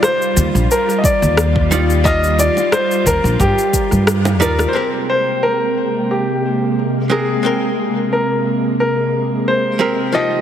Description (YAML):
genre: sunset chillout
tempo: 89 BPM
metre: 4/4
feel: swing 54% on 16ths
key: Ab lydian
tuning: A4 = 439 Hz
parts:
  - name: warm grand piano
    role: melody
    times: 0.0-10.4 s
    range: G4 to Eb5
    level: -18 LUFS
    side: left 1 dB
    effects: ping-pong delay
  - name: archtop guitar, miked and amplified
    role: accompaniment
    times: 0.0-10.4 s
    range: F3 to G5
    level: -22 LUFS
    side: moving between left 4 dB and right 3 dB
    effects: auto-pan, tape echo
  - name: soft string machine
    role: sustained chords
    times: 0.0-10.4 s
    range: C3 to G5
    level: -20 LUFS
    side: right 1 dB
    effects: ensemble chorus
  - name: electronic rim click and cabasa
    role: drums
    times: 0.0-4.7 s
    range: none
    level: -20 LUFS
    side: left 1 dB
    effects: overdrive
  - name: upright bass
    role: bass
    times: 0.4-4.6 s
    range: Bb1 to G2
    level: -16 LUFS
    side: equal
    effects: none
  - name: electronic kick drum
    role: drums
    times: 1.0-3.9 s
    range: none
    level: -19 LUFS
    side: equal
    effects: overdrive
  - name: bongos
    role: percussion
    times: 1.7-4.7 s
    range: none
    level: -26 LUFS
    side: right 2 dB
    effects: none
room: moderate lush hall reverb, RT60 2.6 s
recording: heavily compressed radio sound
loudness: -13 LUFS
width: side -9 dB against mid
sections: 0.0-4.7 A section; 4.7-10.4 B section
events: band accent 4.1-4.4; drum fill 4.4-4.7; filter sweep on string machine 4.7-10.4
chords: 0.0 Ebmaj9; 4.7 Abmaj9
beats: 0.03 0.70 1.38 | 2.05 2.72 3.40 4.07 | 4.75 5.42 6.09 6.77 | 7.44 8.12 8.79 9.46 | 10.14